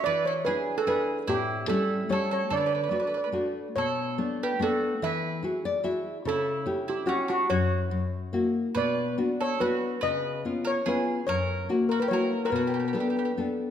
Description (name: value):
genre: italian folk, Italian serenade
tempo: 144 BPM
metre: 3/4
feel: rubato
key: D major, B minor from 3.8 s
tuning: A4 = 436 Hz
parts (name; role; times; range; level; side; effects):
- steel pan; melody; 0.0-13.3 s; F#4 to E5; -28 LUFS; right 1 dB; none
- bowl-back mandolin; second line; 0.0-13.3 s; C#4 to B4; -34 LUFS; right 4 dB; none
- nylon-string guitar; accompaniment; 0.1-13.7 s; F#2 to E5; -28 LUFS; left 3 dB; none
room: wet recital hall reverb, RT60 1.6 s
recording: none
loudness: -25 LUFS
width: side -9 dB against mid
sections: 0.0-3.8 A section; 3.8-13.7 B section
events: nylon-string guitar fill 5.4-6.3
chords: 0.1 E7; 1.3 A7; 2.5 D; 3.8 Bm7; 5.0 Eadd9; 6.3 C#dim; 7.5 N.C.; 7.9 F#7; 8.8 Bm; 10.0 C#7; 11.3 F#7; 12.5 Bm7